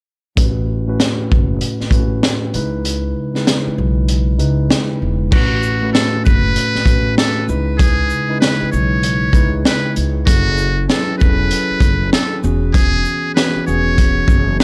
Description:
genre	hip hop, boom-bap hip-hop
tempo	97 BPM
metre	4/4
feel	swing 62% on 16ths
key	unclear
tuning	A4 = 441 Hz
part	mellow tine electric piano	accompaniment	0.4-14.6 s	A2 to B4	-22 LUFS	equal	cassette tape, high-pass filter, low-pass filter
part	upright bass	bass	0.4-14.6 s	E1 to C#2	-22 LUFS	equal	none
part	crunchy breakbeat drum kit	drums	0.4-14.6 s	crash cymbal, hi-hat, kick drum, shaker, snare drum	-18 LUFS	equal	none
part	trumpet with metal mute	melody	5.3-14.6 s	F#4 to C#5	-22 LUFS	equal	high-pass filter, low-pass filter, analog delay
room	little or no reverb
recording	dry, gritty hardware recording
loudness	-16 LUFS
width	mono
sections	0.4-5.3 A section; 5.3-14.6 B section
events	kick muted 2.8-5.3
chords	0.4 A69; 2.5 C#m7; 5.3 A69; 7.5 C#m7; 10.3 F#m9; 12.4 E6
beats	| 0.37 0.99 1.61 2.23 | 2.85 3.46 4.08 4.70 | 5.32 5.94 6.56 7.17 | 7.79 8.41 9.03 9.65 | 10.27 10.89 11.51 12.12 | 12.74 13.36 13.98 14.60

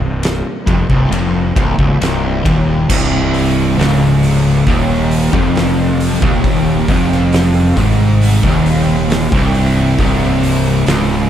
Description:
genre	stoner and doom metal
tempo	68 BPM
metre	4/4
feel	straight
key	C phrygian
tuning	A4 = 442 Hz
part	string machine, cellos	sustained chords	0.0-11.3 s	C3 to C4	-26 LUFS	equal	none
part	fuzz guitar	riff	0.0-11.3 s	C2 to Ab2	-15 LUFS	equal	distortion
part	fuzz fingered electric bass	bass	0.0-11.3 s	C1 to Ab1	-18 LUFS	equal	overdrive
part	oversized low-tuned drum kit	drums	0.2-11.1 s	crash cymbal, hi-hat, kick drum, ride cymbal, snare drum	-18 LUFS	equal	none
part	distorted electric guitar	riff	2.9-11.3 s	C2 to Ab2	-16 LUFS	right 1 dB	distortion
room	small room ambience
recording	dark, warm production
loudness	-11 LUFS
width	side -10 dB against mid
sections	0.0-2.9 A section; 2.9-11.3 B section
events	none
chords	0.0 Cm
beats	0.23 1.12 2.01 | 2.90 3.78 4.67 5.56 | 6.44 7.33 8.21 9.10 | 9.98 10.86

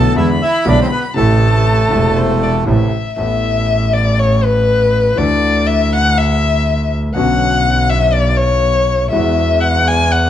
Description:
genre	tango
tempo	120 BPM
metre	4/4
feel	rubato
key	A harmonic minor, A major from 3.2 s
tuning	A4 = 440 Hz
part	bandoneon	melody	0.0-2.6 s	A3 to A5	-17 LUFS	right 2 dB	none
part	warm violin	second line	0.0-10.3 s	B4 to B5	-16 LUFS	left 4 dB	none
part	clear concert grand piano	accompaniment	0.0-10.3 s	E1 to A4	-19 LUFS	left 1 dB	none
part	clear double bass	bass	0.0-10.3 s	E1 to E2	-15 LUFS	right 1 dB	none
room	light reverb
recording	dark, warm production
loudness	-11 LUFS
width	side -10 dB against mid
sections	0.0-3.2 A section; 3.2-10.3 B section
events	violin solo 3.2-10.3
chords	0.2 E7; 1.2 Am; 3.2 Asus2; 5.2 Dsus2; 7.2 Bmadd9; 9.1 Eadd9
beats	0.17 0.67 | 1.17 1.66 2.17 2.68 | 3.19 3.69 4.19 4.69 | 5.18 5.68 6.17 6.67 | 7.16 7.66 8.15 8.64 | 9.14 9.63 10.13

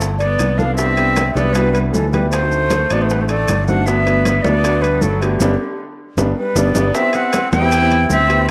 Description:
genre	Afro-Cuban jazz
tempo	156 BPM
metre	4/4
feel	straight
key	G major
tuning	A4 = 440 Hz
part	fingered electric bass	bass	0.0-8.5 s	G1 to E2	-21 LUFS	equal	none
part	bongos	percussion	0.0-8.3 s	none	-33 LUFS	equal	none
part	congas	percussion	0.0-8.5 s	none	-26 LUFS	equal	none
part	maracas	percussion	0.0-8.5 s	none	-33 LUFS	equal	none
part	breathy concert flute	melody	0.2-8.5 s	G4 to G5	-21 LUFS	equal	none
part	clear viola	second line	0.2-8.5 s	D3 to E4	-25 LUFS	equal	none
part	timbales	percussion	0.2-8.5 s	none	-31 LUFS	equal	none
part	warm baby grand piano	accompaniment	0.6-8.5 s	G3 to A4	-23 LUFS	equal	none
room	wet spring reverb, RT60 1.6 s, small room ambience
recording	none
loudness	-16 LUFS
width	mono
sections	0.0-7.0 A section; 7.0-8.5 B section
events	band accent 5.4-7.0; drum fill 5.8-7.0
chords	0.0 G7; 0.8 Cmaj9; 2.3 D7b9; 3.9 Gmaj7; 7.0 Cmaj9#11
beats	0.01 0.40 | 0.78 1.17 1.55 1.94 | 2.33 2.71 3.10 3.48 | 3.87 4.25 4.64 5.03 | 5.41 5.80 6.18 6.57 | 6.95 7.34 7.72 8.11 | 8.49

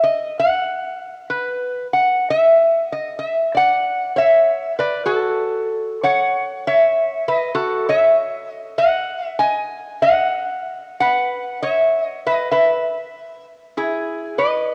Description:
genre	hawaiian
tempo	96 BPM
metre	4/4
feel	swing 58% on 8ths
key	E major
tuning	A4 = 440 Hz
part	metal-body resonator slide guitar	solo	0.0-14.7 s	E4 to G#5	-19 LUFS	equal	cassette tape
room	moderate lush hall reverb, RT60 2.1 s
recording	home recording on cassette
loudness	-19 LUFS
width	mono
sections	0.0-3.8 A section; 3.8-13.7 B section; 13.7-14.7 A section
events	none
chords	0.0 N.C.; 3.8 D; 6.3 F#m7; 8.7 B (rootless); 11.2 E5; 13.7 Emaj7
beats	0.02 0.64 | 1.27 1.89 2.51 3.14 | 3.76 4.38 5.01 5.63 | 6.25 6.88 7.50 8.12 | 8.74 9.37 9.99 10.61 | 11.23 11.86 12.48 13.10 | 13.72 14.35

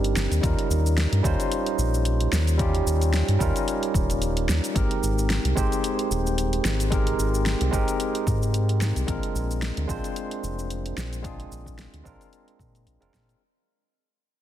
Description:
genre	sunset chillout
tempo	111 BPM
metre	4/4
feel	swing 56% on 16ths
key	unclear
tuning	A4 = 440 Hz
part	barky tine electric piano	accompaniment	0.0-13.4 s	G3 to C5	-27 LUFS	right 1 dB	auto-pan, digital delay
part	round analog bass	bass	0.0-13.4 s	Eb1 to Bb2	-24 LUFS	equal	tube saturation
part	deep house drum kit	drums	0.0-13.4 s	hi-hat, shaker, snare drum	-31 LUFS	equal	overdrive
part	electronic kick drum	drums	0.4-13.3 s	none	-28 LUFS	equal	overdrive
room	light reverb, digital ambience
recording	dense, heavily limited modern master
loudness	-22 LUFS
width	side -12 dB against mid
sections	0.0-13.4 A section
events	fade-out 7.6-13.4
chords	0.4 Eb7; 4.8 Abmaj9; 9.1 Bb9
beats	| 0.43 0.97 1.51 2.05 | 2.59 3.13 3.67 4.22 | 4.76 5.30 5.84 6.38 | 6.92 7.46 8.00 8.54 | 9.08 9.62 10.16 10.70 | 11.24 11.78 12.32 12.86

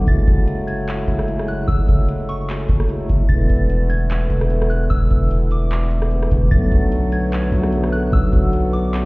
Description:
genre	hip hop, atmospheric cloud-rap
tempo	149 BPM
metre	4/4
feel	half-time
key	B dorian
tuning	A4 = 440 Hz
part	soft synth bell	melody	0.0-9.1 s	C#6 to A6	-32 LUFS	equal	chorus, phaser, tape echo
part	pedal harmonium	sustained chords	0.0-9.1 s	C#3 to F#4	-23 LUFS	equal	sidechain pumping
part	long sustained 808-style bass	bass	0.0-9.1 s	E1 to B1	-19 LUFS	equal	none
part	booming analog drum machine	drums	0.1-9.0 s	handclaps, hi-hat, kick drum, rim click	-18 LUFS	equal	none
room	digital ambience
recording	heard muffled through a wall, stone room reverb, EQ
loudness	-16 LUFS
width	side -24 dB against mid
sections	0.0-6.5 A section; 6.5-9.1 B section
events	none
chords	0.1 F#m9; 3.3 E7sus4; 6.5 Bm7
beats	| 0.07 0.47 0.88 1.28 | 1.68 2.09 2.49 2.89 | 3.29 3.70 4.10 4.50 | 4.91 5.31 5.71 6.11 | 6.52 6.92 7.32 7.72 | 8.13 8.53 8.93

